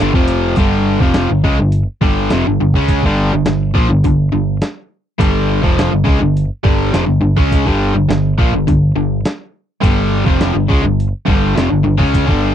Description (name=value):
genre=classic rock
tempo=104 BPM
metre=4/4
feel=straight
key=unclear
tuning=A4 = 440 Hz
part: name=cranked stack guitar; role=riff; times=0.0-12.5 s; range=F2 to C#4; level=-14 LUFS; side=equal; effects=overdrive
part: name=picked electric bass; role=bass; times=0.0-12.5 s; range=F1 to C#2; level=-18 LUFS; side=equal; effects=none
part: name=boom bap sampler-style drum kit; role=drums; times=0.1-12.3 s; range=hi-hat, kick drum, snare drum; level=-15 LUFS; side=equal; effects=none
room=little or no reverb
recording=dry, close 1970s-style studio recording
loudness=-12 LUFS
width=side -10 dB against mid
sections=0.6-12.5 A section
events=none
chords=0.0 G5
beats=0.00 | 0.58 1.16 1.73 2.31 | 2.89 3.47 4.04 4.62 | 5.20 5.78 6.36 6.94 | 7.52 8.10 8.68 9.26 | 9.83 10.41 10.99 11.57 | 12.15